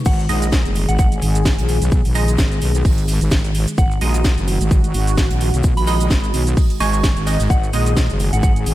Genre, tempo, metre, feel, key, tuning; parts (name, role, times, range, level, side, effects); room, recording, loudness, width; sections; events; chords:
bass house; 129 BPM; 4/4; swing 56% on 16ths; A4 = 440 Hz
sweeping resonant pad; sustained chords; 0.0-8.7 s; D#3 to G#4; -25 LUFS; equal; chorus, sidechain pumping
soft synth bell; melody; 0.1-8.5 s; F#5 to C#6; -27 LUFS; right 1 dB; chorus, phaser, ping-pong delay
wobble bass; bass; 0.1-8.7 s; F#1 to B1; -18 LUFS; equal; chorus, overdrive, sidechain pumping
electronic kick drum; drums; 0.1-8.5 s; -17 LUFS; equal
gated 80s drum kit; drums; 0.1-8.7 s; hi-hat, shaker, snare drum; -34 LUFS; equal; sidechain pumping on hats, high-pass filter on hats, high-pass filter on snare, sidechain pumping on perc, high-pass filter on perc, high-pass filter on room
house drum kit; drums; 0.1-8.7 s; crash cymbal, hi-hat, shaker, snare drum; -26 LUFS; equal
band-passed chord stab; stabs; 0.3-8.7 s; G#3 to G#5; -27 LUFS; right 4 dB; phaser, vintage 12-bit sampler grit, sidechain pumping, ping-pong delay
light reverb; -14 LUFS; side -15 dB against mid
0.0-8.7 A section
0.0 G#5